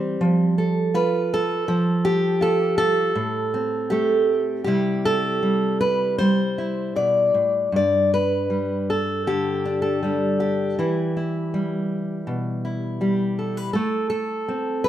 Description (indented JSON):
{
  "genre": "folk, solo fingerstyle acoustic guitar",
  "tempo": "80 BPM",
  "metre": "4/4",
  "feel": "rubato",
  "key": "G mixolydian",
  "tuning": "A4 = 438 Hz",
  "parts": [
    { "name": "fingerpicked steel-string acoustic guitar", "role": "solo", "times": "0.0-14.9 s", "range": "G2 to D5", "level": "-20 LUFS", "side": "equal", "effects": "none" }
  ],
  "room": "moderate large studio reverb, RT60 0.9 s",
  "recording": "band playing live in one room",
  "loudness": "-20 LUFS",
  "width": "side -11 dB against mid",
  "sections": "0.0-7.7 A section; 7.7-14.9 B section",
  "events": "none",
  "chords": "0.2 Fadd9; 1.7 N.C.; 3.2 Am; 4.7 Cadd9; 7.7 Gsus2; 10.8 Em; 13.7 Am"
}